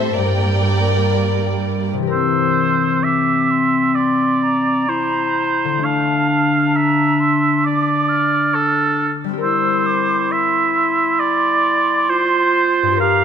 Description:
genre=cinematic, emotional film score for orchestra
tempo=66 BPM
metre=4/4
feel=uneven beats, rubato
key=unclear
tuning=A4 = 439 Hz
part: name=rich studio violin section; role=melody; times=0.0-1.6 s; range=E5 to G5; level=-28 LUFS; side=left 2 dB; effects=none
part: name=rich studio violin section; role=second line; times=0.0-1.9 s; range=A4 to D5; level=-24 LUFS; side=equal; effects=none
part: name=rich studio viola section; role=accompaniment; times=0.0-1.9 s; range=G3 to C4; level=-25 LUFS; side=right 3 dB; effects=none
part: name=concert harp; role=arpeggios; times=0.0-13.2 s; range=G2 to G5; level=-23 LUFS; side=left 11 dB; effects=none
part: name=warm studio cello section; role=bass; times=0.0-1.9 s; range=G2 to A2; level=-20 LUFS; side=right 5 dB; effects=none
part: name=clear oboe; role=second line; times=2.1-13.2 s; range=A4 to F5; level=-18 LUFS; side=right 4 dB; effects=none
part: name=hollow concert flute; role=second line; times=2.1-13.2 s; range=A5 to F6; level=-22 LUFS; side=equal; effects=none
part: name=mellow clarinet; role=second line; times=2.1-13.2 s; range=C4 to G4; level=-20 LUFS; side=left 1 dB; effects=none
room=moderate concert hall reverb, RT60 2.4 s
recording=close, detailed microphones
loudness=-14 LUFS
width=side -8 dB against mid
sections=0.0-2.1 A section; 2.1-13.2 B section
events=none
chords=0.2 Gm; 2.1 C7; 5.8 Dmadd9; 9.4 C7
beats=0.16 1.13 | 2.11 3.03 3.95 4.88 | 5.82 6.74 7.64 8.53 | 9.42 10.30 11.19 12.09 | 13.01

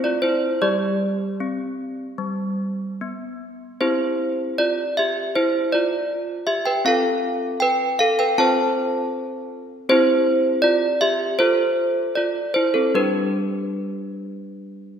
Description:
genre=classical, tune for handbells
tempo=78 BPM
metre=4/4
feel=straight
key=C major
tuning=A4 = 440 Hz
part: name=desk bells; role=solo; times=0.0-15.0 s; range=G3 to A5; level=-19 LUFS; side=equal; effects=none
room=wet concert hall reverb, RT60 2.1 s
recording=recorded in a church or concert hall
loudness=-19 LUFS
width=side -8 dB against mid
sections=0.0-3.8 A section; 3.8-15.0 B section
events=none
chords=0.0 F5; 0.6 Gsus4; 2.2 G; 3.8 C; 6.8 F/C; 9.9 C; 11.4 Dm7; 12.9 G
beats=| 0.60 1.40 2.19 2.98 | 3.78 4.55 5.33 6.09 | 6.85 7.61 8.36 9.12 | 9.87 10.63 11.39 12.15 | 12.92 13.71 14.48

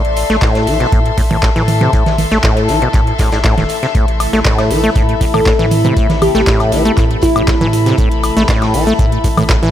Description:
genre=acid house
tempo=119 BPM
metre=4/4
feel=straight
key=A minor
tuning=A4 = 440 Hz
part: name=glassy wavetable pluck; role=melody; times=0.0-0.2, 5.3-7.6 s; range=E4 to D5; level=-18 LUFS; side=equal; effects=chorus, digital delay
part: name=acid bass, saw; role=riff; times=0.0-9.7 s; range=A2 to A3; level=-16 LUFS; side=equal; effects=tube saturation, digital delay
part: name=warm sub bass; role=bass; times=0.0-9.7 s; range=E1 to A2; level=-19 LUFS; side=equal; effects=sidechain pumping
part: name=electro analog drum machine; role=drums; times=0.0-9.7 s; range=congas, handclaps, hi-hat, shaker, woodblock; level=-19 LUFS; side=right 1 dB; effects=none
part: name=rich studio string section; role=texture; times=0.0-9.7 s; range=A4 to C6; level=-19 LUFS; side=left 5 dB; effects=sidechain pumping
part: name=vintage drum kit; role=drums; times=0.2-9.7 s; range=hi-hat, snare drum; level=-27 LUFS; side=equal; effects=high-pass filter on hats, high-pass filter on snare, high-pass filter on room
part: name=electronic kick drum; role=drums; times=0.4-9.6 s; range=none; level=-14 LUFS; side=equal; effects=none
part: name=warm analog pad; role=sustained chords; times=3.9-9.7 s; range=C3 to E4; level=-22 LUFS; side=right 2 dB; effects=chorus, sidechain pumping
room=light reverb, small room ambience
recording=none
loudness=-10 LUFS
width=side -11 dB against mid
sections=0.0-9.7 A section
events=none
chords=0.0 Am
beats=0.42 0.92 1.43 | 1.93 2.44 2.94 3.44 | 3.95 4.45 4.96 5.46 | 5.97 6.47 6.97 7.48 | 7.98 8.49 8.99 9.49

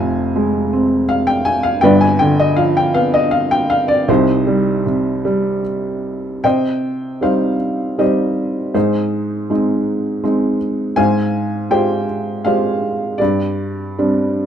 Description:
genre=classical, lyrical solo piano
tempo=79 BPM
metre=3/4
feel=rubato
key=C minor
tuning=A4 = 440 Hz
part: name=felt-muted upright piano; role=solo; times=0.0-14.5 s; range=F1 to Ab5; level=-14 LUFS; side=equal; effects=none
room=light reverb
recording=dark, warm production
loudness=-14 LUFS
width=side -9 dB against mid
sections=0.0-6.4 A section; 6.4-14.5 B section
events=none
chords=0.0 Fm; 1.8 G7; 4.1 Cm; 8.7 Ab; 11.0 Fmadd9/Ab; 13.2 Gsus4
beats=0.34 1.08 | 1.82 2.56 3.32 | 4.09 4.86 5.65 | 6.44 7.22 7.98 | 8.75 9.50 10.24 | 10.97 11.71 12.45 | 13.20 13.96

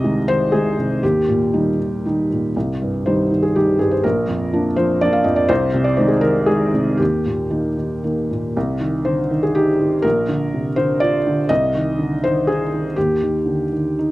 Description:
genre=neoclassical minimalist piano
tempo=121 BPM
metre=3/4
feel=rubato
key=C minor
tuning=A4 = 440 Hz
part: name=felt-muted upright piano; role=solo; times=0.0-14.1 s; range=Bb1 to F5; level=-16 LUFS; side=equal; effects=slapback echo
room=light reverb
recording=recorded outdoors, with no room sound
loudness=-16 LUFS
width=side -17 dB against mid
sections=0.0-8.6 A section; 8.6-14.1 B section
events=none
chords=0.0 Ab/C; 1.0 Eb; 2.5 Cm; 4.0 Bb; 5.5 Ab/C; 7.0 Eb; 8.6 Cm; 10.0 Bb; 11.5 Ab/C; 13.0 Eb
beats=0.02 0.52 | 1.02 1.53 2.04 | 2.55 3.05 3.55 | 4.04 4.53 5.01 | 5.50 5.99 6.48 | 7.00 7.51 8.04 | 8.55 9.05 9.55 | 10.04 10.53 11.01 | 11.50 11.98 12.47 | 12.96 13.46 13.97

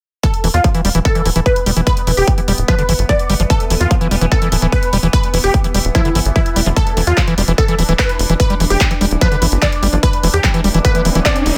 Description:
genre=psychedelic trance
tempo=147 BPM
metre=4/4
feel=straight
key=E phrygian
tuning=A4 = 442 Hz
part: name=supersaw stab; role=melody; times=0.2-11.5 s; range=E4 to D5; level=-22 LUFS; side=equal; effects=phaser, sidechain pumping, delay
part: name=overtone-sweeping drone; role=sustained chords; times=1.3-11.6 s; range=E3 to D4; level=-29 LUFS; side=equal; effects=chorus, built-in reverb, phaser, sidechain pumping
part: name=overdriven acid bass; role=riff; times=0.2-11.2 s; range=D3 to B3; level=-21 LUFS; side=equal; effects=sidechain pumping, delay
part: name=big-room dance drum kit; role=drums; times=0.2-11.5 s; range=handclaps, hi-hat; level=-24 LUFS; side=equal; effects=none
part: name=electronic kick drum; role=drums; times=0.2-11.3 s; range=none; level=-18 LUFS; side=equal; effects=none
part: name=tight sequencer bass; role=bass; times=0.4-11.5 s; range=D1 to E2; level=-18 LUFS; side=equal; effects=none
part: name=riser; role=sound effects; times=10.9-11.6 s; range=none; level=-24 LUFS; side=equal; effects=none
room=little or no reverb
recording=none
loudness=-14 LUFS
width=mono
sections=0.2-11.6 A section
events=riser 10.9-11.6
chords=0.2 E5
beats=| 0.23 0.64 1.05 1.46 | 1.87 2.27 2.68 3.09 | 3.50 3.91 4.32 4.72 | 5.13 5.54 5.95 6.36 | 6.76 7.17 7.58 7.99 | 8.40 8.81 9.21 9.62 | 10.03 10.44 10.85 11.26

